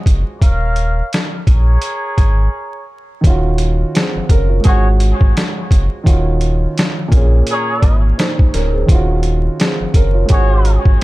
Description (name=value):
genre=hip hop, boom-bap hip-hop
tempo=85 BPM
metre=4/4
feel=swing 59% on 16ths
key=Eb dorian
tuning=A4 = 438 Hz
part: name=dark concert grand piano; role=accompaniment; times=0.0-11.0 s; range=Ab2 to Db5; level=-20 LUFS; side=right 2 dB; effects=cassette tape, high-pass filter, low-pass filter
part: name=muted trumpet section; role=stabs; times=0.0-10.8 s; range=Gb4 to F5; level=-22 LUFS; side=equal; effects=high-pass filter, low-pass filter, tape echo
part: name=sub bass with octave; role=bass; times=0.1-11.0 s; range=D1 to Bb1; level=-14 LUFS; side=equal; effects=none
part: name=boom bap sampler-style drum kit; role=drums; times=0.1-11.0 s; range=hi-hat, kick drum, snare drum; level=-14 LUFS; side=equal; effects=none
room=digital ambience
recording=dark, warm production, vinyl crackle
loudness=-12 LUFS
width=side -18 dB against mid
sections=0.0-3.2 A section; 3.2-11.0 B section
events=break 2.5-3.2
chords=0.4 Ebsus2; 1.5 Bbm7; 3.2 Ebm9; 4.7 Ab7sus4; 6.1 Ebm9; 7.1 Bbm7; 8.9 Ebm9; 10.3 Ab7sus4